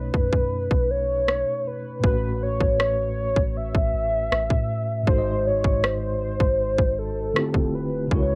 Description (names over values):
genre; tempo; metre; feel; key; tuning
contemporary R&B; 79 BPM; 4/4; straight; unclear; A4 = 441 Hz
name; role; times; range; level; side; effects
warm velvety synth lead; melody; 0.0-8.4 s; A4 to E5; -27 LUFS; equal; chorus, cassette tape, plate reverb, tape echo
mellow tine electric piano; accompaniment; 0.0-8.4 s; G#2 to D#5; -31 LUFS; equal; cassette tape
soft 808-style bass; bass; 0.0-8.4 s; D1 to A2; -33 LUFS; equal; none
trap drum kit; drums; 0.1-8.3 s; kick drum, rim click; -25 LUFS; equal; cassette tape
room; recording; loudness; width
moderate small room reverb, RT60 0.5 s; home recording on cassette; -23 LUFS; mono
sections
0.0-8.4 A section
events
none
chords
0.0 B7; 2.0 A69; 5.1 G#7; 7.4 Dm11